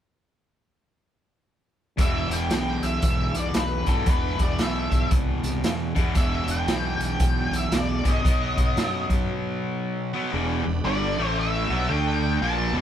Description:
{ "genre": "blues rock power trio and southern rock", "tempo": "115 BPM", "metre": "4/4", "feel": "swing 62% on 8ths", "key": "E harmonic minor", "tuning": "A4 = 442 Hz", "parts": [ { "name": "octave-fuzz lead guitar", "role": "melody", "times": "2.0-12.8 s", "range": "A4 to A5", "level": "-28 LUFS", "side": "equal", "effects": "distortion" }, { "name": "cranked stack guitar", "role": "riff", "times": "2.0-12.8 s", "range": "E2 to D4", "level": "-27 LUFS", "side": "equal", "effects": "overdrive" }, { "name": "fuzz fingered electric bass", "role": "bass", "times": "2.0-12.8 s", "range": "E1 to F#2", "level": "-28 LUFS", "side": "equal", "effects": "overdrive" }, { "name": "raw garage drum kit", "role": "drums", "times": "2.0-9.2 s", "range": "hi-hat, kick drum, snare drum", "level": "-24 LUFS", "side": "equal", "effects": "none" }, { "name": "bright tonewheel organ", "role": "sustained chords", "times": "10.3-12.8 s", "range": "A3 to E5", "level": "-36 LUFS", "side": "right 4 dB", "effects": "chorus vibrato" } ], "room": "little or no reverb", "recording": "band playing live in one room", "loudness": "-22 LUFS", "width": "side -10 dB against mid", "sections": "2.0-10.3 A section; 10.3-12.8 B section", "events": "break 9.3-10.3", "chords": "2.0 Em; 8.2 B; 10.3 Em9; 11.1 A5; 11.6 Em9; 11.9 D5" }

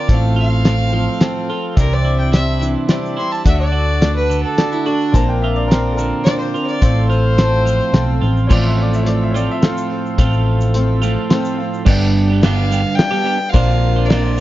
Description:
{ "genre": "folk rock and heartland rock", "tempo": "107 BPM", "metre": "3/4", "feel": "straight", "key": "unclear", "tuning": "A4 = 440 Hz", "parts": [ { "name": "rich fiddle", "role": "melody", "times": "0.0-8.5, 12.4-14.4 s", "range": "D4 to C6", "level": "-21 LUFS", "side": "equal", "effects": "none" }, { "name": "picked twelve-string acoustic guitar", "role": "accompaniment", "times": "0.0-14.4 s", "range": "G2 to B4", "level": "-24 LUFS", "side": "left 5 dB", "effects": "none" }, { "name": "mellow accordion", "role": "sustained chords", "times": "0.0-11.8 s", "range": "G4 to D6", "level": "-29 LUFS", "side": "right 1 dB", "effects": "none" }, { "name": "twelve-string electric guitar", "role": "riff", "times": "0.0-14.4 s", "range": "G2 to C5", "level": "-22 LUFS", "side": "right 7 dB", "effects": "none" }, { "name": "hollow-body short-scale picked electric bass", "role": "bass", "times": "0.1-14.4 s", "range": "G1 to D2", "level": "-16 LUFS", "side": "equal", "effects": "none" }, { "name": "cloth-damped thuddy drum kit", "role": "drums", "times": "0.1-14.2 s", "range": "crash cymbal, hi-hat, kick drum, ride cymbal, snare drum", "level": "-16 LUFS", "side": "equal", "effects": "none" }, { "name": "dark baby grand piano", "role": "accompaniment", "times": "1.8-14.4 s", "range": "D4 to A5", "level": "-30 LUFS", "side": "left 4 dB", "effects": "none" }, { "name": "tube shaker", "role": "percussion", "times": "1.8-14.4 s", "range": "none", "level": "-41 LUFS", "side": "right 5 dB", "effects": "none" }, { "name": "bright upright piano", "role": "second line", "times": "5.1-10.7 s", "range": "A4 to A5", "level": "-26 LUFS", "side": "left 2 dB", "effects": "none" } ], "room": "little or no reverb", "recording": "dark, warm production, nothing above 7.5 kHz", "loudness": "-13 LUFS", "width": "side -15 dB against mid", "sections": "0.0-8.5 A section; 8.5-11.9 B section; 11.9-14.4 C section", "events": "fiddle solo 0.0-8.5; grand piano fill 10.7-11.9", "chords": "0.1 F/A; 1.8 Cadd9; 3.5 D; 5.1 Bbadd9; 6.8 F/A; 11.9 G; 13.5 Bbadd9" }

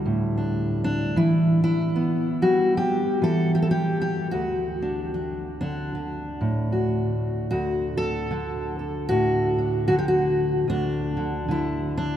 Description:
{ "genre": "folk, solo fingerstyle acoustic guitar", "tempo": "76 BPM", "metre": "4/4", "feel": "swing 60% on 8ths", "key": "D major", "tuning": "A4 = 440 Hz", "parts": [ { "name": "fingerpicked steel-string acoustic guitar", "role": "solo", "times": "0.0-12.2 s", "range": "D2 to A4", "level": "-22 LUFS", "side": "equal", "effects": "none" } ], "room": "wet cathedral reverb, RT60 6.1 s", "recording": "in a vast, echoing space", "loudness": "-22 LUFS", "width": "side -10 dB against mid", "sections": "0.0-7.5 A section; 7.5-12.2 B section", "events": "none", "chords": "0.0 Dsus2; 1.1 Em; 4.3 D" }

